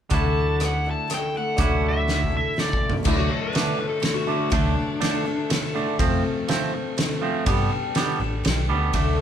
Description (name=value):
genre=folk rock and heartland rock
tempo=122 BPM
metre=3/4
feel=straight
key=D mixolydian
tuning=A4 = 440 Hz
part: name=nasal lead guitar with a parked wah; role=melody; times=0.1-2.9 s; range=D5 to A5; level=-27 LUFS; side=equal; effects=overdrive
part: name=picked steel-string acoustic guitar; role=accompaniment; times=0.1-9.2 s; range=D3 to C5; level=-29 LUFS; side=left 5 dB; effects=none
part: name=twangy electric guitar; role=riff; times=0.1-9.2 s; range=D3 to F#4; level=-27 LUFS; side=right 5 dB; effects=none
part: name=vintage muted fingered electric bass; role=bass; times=0.1-9.1 s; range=A1 to G2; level=-25 LUFS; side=equal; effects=none
part: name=loose indie drum kit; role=drums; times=0.1-9.1 s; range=crash cymbal, hi-hat, kick drum, ride cymbal, rim click, snare drum, toms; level=-25 LUFS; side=equal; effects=none
part: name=overdriven slide guitar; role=second line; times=3.1-5.5 s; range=D4 to B4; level=-28 LUFS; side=left 6 dB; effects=none
room=moderate large studio reverb, RT60 1.3 s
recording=band playing live in one room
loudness=-20 LUFS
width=side -9 dB against mid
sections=0.1-3.1 A section; 3.1-9.2 B section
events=drum fill 2.1-3.1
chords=0.1 Dadd9; 6.0 F; 7.5 Gadd9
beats=| 0.11 0.60 1.10 | 1.59 2.08 2.57 | 3.06 3.55 4.04 | 4.53 5.02 5.51 | 6.00 6.49 6.98 | 7.47 7.96 8.45 | 8.94